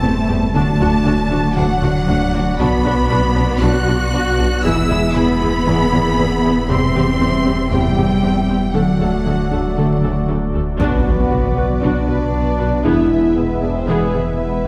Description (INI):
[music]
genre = cinematic, hybrid orchestral and electronic film score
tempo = 117 BPM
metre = 4/4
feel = straight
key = B phrygian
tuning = A4 = 439 Hz
[part]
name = rich symphonic violin section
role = melody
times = 0.0-14.7 s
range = B4 to F#6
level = -28 LUFS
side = equal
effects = none
[part]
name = warm symphonic violin section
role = second line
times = 0.0-14.7 s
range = B4 to F#6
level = -30 LUFS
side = equal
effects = none
[part]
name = warm symphonic viola section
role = accompaniment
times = 0.0-14.7 s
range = A3 to B4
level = -28 LUFS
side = equal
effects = none
[part]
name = brassy analog pad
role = sustained chords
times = 0.0-14.7 s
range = E3 to E5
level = -25 LUFS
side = equal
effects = chorus
[part]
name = soft round pluck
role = arpeggios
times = 0.0-14.7 s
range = C3 to B4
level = -26 LUFS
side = equal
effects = chorus, tape echo
[part]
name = clear symphonic double bass section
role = bass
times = 0.0-14.7 s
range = E1 to E2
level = -24 LUFS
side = equal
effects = none
[part]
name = pure sine sub bass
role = bass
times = 0.0-14.7 s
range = D1 to B1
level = -26 LUFS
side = equal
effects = none
[part]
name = warm symphonic cello section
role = bass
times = 0.0-14.7 s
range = E2 to F#4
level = -24 LUFS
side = equal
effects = none
[part]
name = dark French horn section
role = sustained chords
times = 0.5-14.7 s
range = F#3 to E4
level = -25 LUFS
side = equal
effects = none
[part]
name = impact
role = sound effects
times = 10.8-12.8 s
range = none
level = -25 LUFS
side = equal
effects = none
[sound]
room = wet scoring stage reverb, RT60 1.8 s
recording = heard from further back in the room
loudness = -16 LUFS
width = mono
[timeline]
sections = 0.0-10.8 A section; 10.8-14.7 B section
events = impact 10.8-12.8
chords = 0.0 C/E; 0.5 D; 2.6 Bm; 4.6 E; 6.7 C/E; 8.7 D; 10.8 Bm; 12.8 E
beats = 0.03 | 0.54 1.05 1.56 2.08 | 2.59 3.10 3.62 4.13 | 4.64 5.15 5.67 6.18 | 6.69 7.21 7.72 8.23 | 8.74 9.26 9.77 10.28 | 10.79 11.31 11.82 12.33 | 12.85 13.36 13.87 14.38